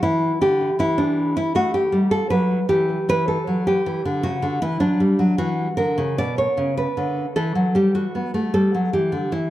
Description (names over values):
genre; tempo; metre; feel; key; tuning
classical, baroque-style dance for nylon-string guitar; 77 BPM; 4/4; rubato; E minor, B minor from 3.1 s; A4 = 436 Hz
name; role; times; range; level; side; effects
nylon-string guitar; solo; 0.0-9.5 s; B2 to D5; -18 LUFS; equal; tape echo
room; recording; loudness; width
moderate recital hall reverb, RT60 1.5 s; dark, warm production; -18 LUFS; side -14 dB against mid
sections
0.0-9.5 A section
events
none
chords
0.0 Em; 3.1 Gmaj7sus2; 4.6 F#5/E; 6.2 Bm9; 7.8 N.C.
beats
| 0.03 0.80 1.55 2.31 | 3.09 3.86 4.62 5.39 | 6.18 6.97 7.75 8.54 | 9.32